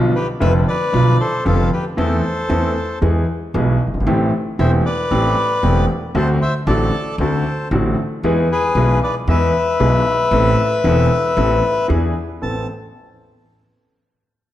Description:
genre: tango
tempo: 115 BPM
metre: 4/4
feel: rubato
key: A minor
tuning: A4 = 440 Hz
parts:
  - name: warm concert grand piano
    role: accompaniment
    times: 0.0-12.6 s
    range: E1 to A4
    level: -18 LUFS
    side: equal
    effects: none
  - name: upright bass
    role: bass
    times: 0.0-12.6 s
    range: E1 to E2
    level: -20 LUFS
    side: equal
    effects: none
  - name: bandoneon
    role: melody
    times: 0.2-12.7 s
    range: F4 to A5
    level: -19 LUFS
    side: left 2 dB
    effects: none
room: wet recital hall reverb, RT60 1.7 s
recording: dark, warm production, lossy compression artefacts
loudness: -15 LUFS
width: side -13 dB against mid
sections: 0.0-12.4 A section; 12.4-14.5 B section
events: none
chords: 0.0 Bdim; 2.0 Am/E; 3.0 E; 4.1 Am7; 6.2 D7; 8.2 E; 10.3 Amadd9; 11.9 E7; 12.4 Amadd9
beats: 0.41 0.93 1.45 | 1.97 2.50 3.02 3.54 | 4.06 4.59 5.11 5.63 | 6.15 6.67 7.19 7.71 | 8.23 8.76 9.28 9.80 | 10.32 10.85 11.37 11.90 | 12.43

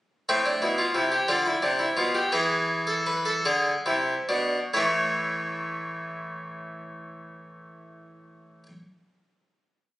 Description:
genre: classical, baroque-style 3-part fugue for harpsichord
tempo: 44-62 BPM (dotted quarters)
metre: 6/8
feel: straight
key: unclear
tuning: A4 = 440 Hz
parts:
  - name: harpsichord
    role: solo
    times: 0.3-8.7 s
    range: A2 to E5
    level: -24 LUFS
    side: equal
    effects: none
room: moderate stone room reverb, RT60 1.2 s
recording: recorded on a phone in the room, studio reverb, compression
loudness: -23 LUFS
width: side -16 dB against mid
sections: 0.3-4.7 exposition; 4.7-10.0 final chord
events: slowing down 0.3-6.1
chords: 0.3 Am; 1.3 Bdim; 2.3 E7; 4.7 A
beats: | 0.29 1.29 | 2.33 3.46 | 4.74 6.09 | 7.46

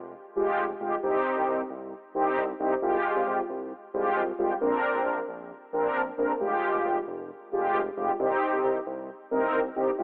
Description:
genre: synth-pop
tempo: 134 BPM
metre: 4/4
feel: straight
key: F dorian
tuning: A4 = 442 Hz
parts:
  - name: smooth synth bass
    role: bass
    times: 0.0-10.0 s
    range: F1 to C2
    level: -38 LUFS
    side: equal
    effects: none
  - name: mellow synth brass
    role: accompaniment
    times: 0.4-10.0 s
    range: Ab3 to Bb4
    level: -28 LUFS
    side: equal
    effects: chorus
room: moderate plate reverb, RT60 3.8 s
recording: rough home demo mix, telephone sound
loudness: -28 LUFS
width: mono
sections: 0.0-10.0 A section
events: none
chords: 0.0 Fmadd9; 1.0 Cm; 2.8 Fmadd9/C; 4.6 Bbadd9; 6.4 Fmadd9; 8.2 Cm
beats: 0.13 0.58 | 1.03 1.48 1.92 2.37 | 2.82 3.27 3.71 4.16 | 4.61 5.06 5.51 5.95 | 6.40 6.85 7.30 7.75 | 8.19 8.64 9.09 9.54 | 9.98

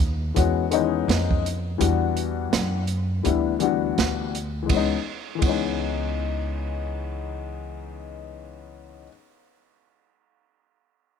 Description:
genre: hip hop, jazz-hop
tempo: 83 BPM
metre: 4/4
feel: swing 64% on 16ths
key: C# minor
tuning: A4 = 440 Hz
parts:
  - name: upright bass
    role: bass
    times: 0.0-9.0 s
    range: C#2 to F#2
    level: -27 LUFS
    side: right 1 dB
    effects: none
  - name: open jazz drum kit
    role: drums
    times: 0.0-5.7 s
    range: hi-hat, kick drum, ride cymbal, snare drum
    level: -26 LUFS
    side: right 3 dB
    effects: none
  - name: dark upright piano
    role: accompaniment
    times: 0.3-9.1 s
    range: D#3 to F#4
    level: -26 LUFS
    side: left 12 dB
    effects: none
room: light reverb, small room ambience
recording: 1960s-style stereo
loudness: -22 LUFS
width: side -7 dB against mid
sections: 0.0-4.7 A section; 4.7-7.6 B section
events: kick muted 1.8-4.7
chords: 0.0 C#m9; 1.8 Em9; 4.7 C#m9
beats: 0.36 1.08 | 1.80 2.52 3.25 3.97 | 4.69 5.42 6.14 6.86

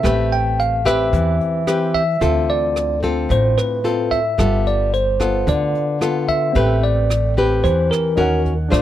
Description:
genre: bossa nova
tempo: 111 BPM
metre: 4/4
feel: straight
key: A minor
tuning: A4 = 440 Hz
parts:
  - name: bell-like tine electric piano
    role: melody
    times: 0.0-8.8 s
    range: Bb4 to G5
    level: -20 LUFS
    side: right 1 dB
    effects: medium stereo tremolo
  - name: nylon-string guitar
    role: accompaniment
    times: 0.0-8.8 s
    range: A2 to C5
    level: -20 LUFS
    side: left 3 dB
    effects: none
  - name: upright bass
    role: bass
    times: 0.0-8.8 s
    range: G1 to E2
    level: -20 LUFS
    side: equal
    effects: none
  - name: jazz brush drum kit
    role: drums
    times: 0.0-8.8 s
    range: hi-hat, kick drum, rim click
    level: -24 LUFS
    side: equal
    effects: none
  - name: warm baby grand piano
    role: accompaniment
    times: 6.5-8.8 s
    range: C4 to G5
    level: -28 LUFS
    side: right 6 dB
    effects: none
room: small room ambience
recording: dry, close 1970s-style studio recording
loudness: -15 LUFS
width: side -12 dB against mid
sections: 0.0-8.8 A section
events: none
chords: 0.0 Am9; 2.2 Dm7; 4.4 G9; 6.5 Am9; 8.2 D#m7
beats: | 0.04 0.58 1.13 1.67 | 2.21 2.75 3.30 3.84 | 4.38 4.92 5.47 6.01 | 6.55 7.09 7.63 8.18 | 8.72

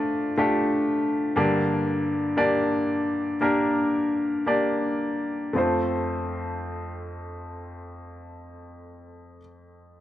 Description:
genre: pop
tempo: 54-62 BPM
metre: 4/4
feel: straight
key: F major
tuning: A4 = 440 Hz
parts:
  - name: clear baby grand piano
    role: accompaniment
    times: 0.0-10.0 s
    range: F2 to D5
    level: -23 LUFS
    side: left 1 dB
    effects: none
room: moderate plate reverb, RT60 3.4 s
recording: dark, warm production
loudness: -22 LUFS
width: side -13 dB against mid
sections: 0.0-5.5 A section; 5.5-10.0 B section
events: slowing down 0.0-5.5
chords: 0.0 Dm/F; 1.4 Gm; 5.5 F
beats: 0.37 | 1.36 2.37 3.40 4.46 | 5.55 6.66 7.76 8.87

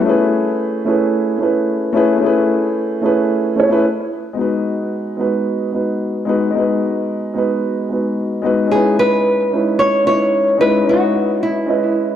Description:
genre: chillout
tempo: 111 BPM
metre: 4/4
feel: straight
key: unclear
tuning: A4 = 440 Hz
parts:
  - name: dark grand piano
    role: accompaniment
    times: 0.0-12.2 s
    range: G#3 to D#5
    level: -15 LUFS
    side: moving between left 3 dB and right 4 dB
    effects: auto-pan, analog delay
  - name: nylon-string guitar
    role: melody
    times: 8.7-12.2 s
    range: E4 to C#5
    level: -15 LUFS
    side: equal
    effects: analog delay
room: wet recital hall reverb, RT60 1.4 s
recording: none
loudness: -14 LUFS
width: side -10 dB against mid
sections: 0.0-4.4 A section; 4.4-12.2 B section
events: none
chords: 0.1 Amaj9; 4.4 G#m7; 8.7 C#m9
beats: | 0.06 0.60 1.14 1.68 | 2.22 2.76 3.30 3.84 | 4.38 4.92 5.46 6.00 | 6.54 7.08 7.62 8.16 | 8.71 9.25 9.79 10.33 | 10.87 11.41 11.95

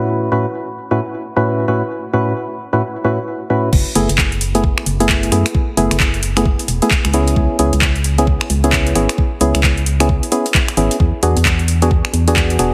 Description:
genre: UK garage, two-step garage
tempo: 132 BPM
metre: 4/4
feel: swing 61% on 16ths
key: F# minor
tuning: A4 = 441 Hz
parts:
  - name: percussive organ stab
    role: stabs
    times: 0.0-12.7 s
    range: A2 to B4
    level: -20 LUFS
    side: equal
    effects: chorus, delay
  - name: organ-like FM bass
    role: bass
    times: 3.7-12.7 s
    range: E1 to F#2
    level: -19 LUFS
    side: equal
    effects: none
  - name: electronic kick drum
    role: drums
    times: 3.7-12.5 s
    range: none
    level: -19 LUFS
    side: equal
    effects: overdrive, small room ambience
  - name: garage drum kit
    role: drums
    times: 3.7-12.7 s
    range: crash cymbal, finger snaps, handclaps, hi-hat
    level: -21 LUFS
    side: equal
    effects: overdrive, small room ambience
room: moderate plate reverb, RT60 1.8 s, digital ambience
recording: heavily compressed radio sound, multiband compression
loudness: -16 LUFS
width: mono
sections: 0.0-3.7 A section; 3.7-12.7 B section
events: drop 3.7-12.7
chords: 0.0 A6; 3.7 F#m11; 7.1 C#m7; 11.0 E7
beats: | 0.09 0.55 1.00 1.45 | 1.91 2.36 2.82 3.27 | 3.73 4.18 4.63 5.09 | 5.54 6.00 6.45 6.91 | 7.36 7.82 8.27 8.73 | 9.18 9.63 10.09 10.54 | 11.00 11.45 11.91 12.36

